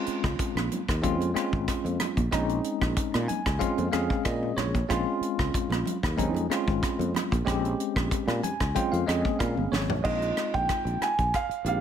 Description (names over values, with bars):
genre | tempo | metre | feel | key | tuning
electric jazz fusion | 93 BPM | 4/4 | straight | Bb dorian | A4 = 441 Hz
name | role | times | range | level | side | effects
bell-like tine electric piano | accompaniment | 0.0-11.8 s | Ab3 to Ab5 | -29 LUFS | left 1 dB | medium stereo tremolo
sustaining fretless electric bass | bass | 0.1-11.8 s | G1 to Bb2 | -30 LUFS | equal | none
tight funk drum kit | drums | 0.1-11.8 s | crash cymbal, hi-hat, kick drum, rim click, snare drum, toms | -30 LUFS | equal | none
congas | percussion | 0.6-10.0 s | none | -35 LUFS | right 7 dB | none
warm grand piano | melody | 10.0-11.8 s | Eb5 to Ab5 | -27 LUFS | right 3 dB | none
room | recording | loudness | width
moderate large studio reverb, RT60 1.1 s | none | -25 LUFS | side -9 dB against mid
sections
0.0-10.0 A section; 10.0-11.8 B section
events
tine electric piano fill 3.0-4.9, 8.1-10.0; drum fill 9.2-10.0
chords
0.0 Bbm7; 10.0 Bb9sus4